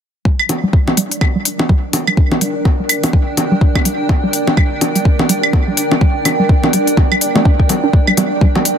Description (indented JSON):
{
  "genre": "minimal techno",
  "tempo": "125 BPM",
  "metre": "4/4",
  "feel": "swing 59% on 16ths",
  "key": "G minor",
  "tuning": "A4 = 440 Hz",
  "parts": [
    { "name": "granular cloud pad", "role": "texture", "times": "1.1-8.8 s", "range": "D4 to G5", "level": "-20 LUFS", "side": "right 1 dB", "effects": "built-in reverb, sidechain pumping" },
    { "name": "resonant blip pluck", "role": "riff", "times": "0.3-8.6 s", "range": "G3 to D4", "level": "-19 LUFS", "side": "equal", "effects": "chorus, cassette tape, sidechain pumping, tape echo" },
    { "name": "electronic kick drum", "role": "drums", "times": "0.3-8.5 s", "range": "none", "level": "-12 LUFS", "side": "equal", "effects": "none" },
    { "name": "pulsing gated texture", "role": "texture", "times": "0.6-8.8 s", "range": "D5", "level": "-26 LUFS", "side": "right 4 dB", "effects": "chorus, built-in reverb, sidechain pumping" },
    { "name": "claves and bongos", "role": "percussion", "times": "0.4-8.6 s", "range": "none", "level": "-18 LUFS", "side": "right 1 dB", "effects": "overdrive, dub echo" },
    { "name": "electronic hi-hat", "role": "drums", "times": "0.5-8.8 s", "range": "none", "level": "-16 LUFS", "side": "left 3 dB", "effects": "none" }
  ],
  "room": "light reverb",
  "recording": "dense, heavily limited modern master",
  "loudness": "-12 LUFS",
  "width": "side -8 dB against mid",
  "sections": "0.3-8.8 A section",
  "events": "filter sweep on synth arpeggio sound 0.3-8.8",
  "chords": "0.3 Gm"
}